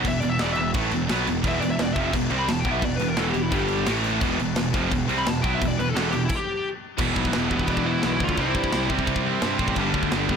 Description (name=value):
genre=heavy metal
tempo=173 BPM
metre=4/4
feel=straight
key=E phrygian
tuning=A4 = 439 Hz
part: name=distorted electric guitar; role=riff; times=0.0-10.4 s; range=E2 to C4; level=-29 LUFS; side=left 13 dB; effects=distortion
part: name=heavy high-gain guitar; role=riff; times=0.0-10.4 s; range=E2 to C4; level=-26 LUFS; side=right 13 dB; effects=distortion
part: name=high-gain distorted guitar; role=riff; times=0.0-10.4 s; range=E2 to E4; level=-32 LUFS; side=equal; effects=distortion
part: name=fuzz picked electric bass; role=bass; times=0.0-10.4 s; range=E1 to G2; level=-28 LUFS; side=equal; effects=overdrive
part: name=tight metal drum kit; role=drums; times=0.0-10.4 s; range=crash cymbal, kick drum, snare drum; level=-28 LUFS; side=left 1 dB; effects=soft clipping on snare
part: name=high-gain lead guitar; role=melody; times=0.1-10.4 s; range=B3 to B5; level=-28 LUFS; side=left 3 dB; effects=distortion
part: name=high-gain lead guitar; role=second line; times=7.5-10.4 s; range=G4 to D5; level=-36 LUFS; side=right 4 dB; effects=none
room=light reverb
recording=blown-out, overdriven recording, overdrive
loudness=-21 LUFS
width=side -6 dB against mid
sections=0.0-7.0 A section; 7.0-10.4 B section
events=lead electric guitar solo 0.0-7.0; stop 6.3-7.0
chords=0.0 Em; 3.5 G5; 3.9 A5; 4.2 Em; 6.3 N.C.; 7.0 Em; 8.4 C; 9.8 G